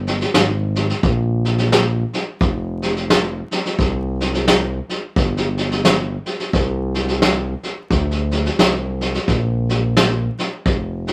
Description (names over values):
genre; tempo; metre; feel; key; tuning
honky-tonk and classic country; 87 BPM; 4/4; swing 60% on 8ths; unclear; A4 = 439 Hz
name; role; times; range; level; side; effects
smooth synth bass; bass; 0.0-11.1 s; F1 to D2; -23 LUFS; equal; none
vintage brush drum kit; drums; 0.1-11.1 s; hi-hat, kick drum, snare drum; -20 LUFS; equal; none
room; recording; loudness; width
moderate studio reverb, RT60 0.5 s; vinyl crackle; -19 LUFS; mono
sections
0.0-11.1 A section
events
none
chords
none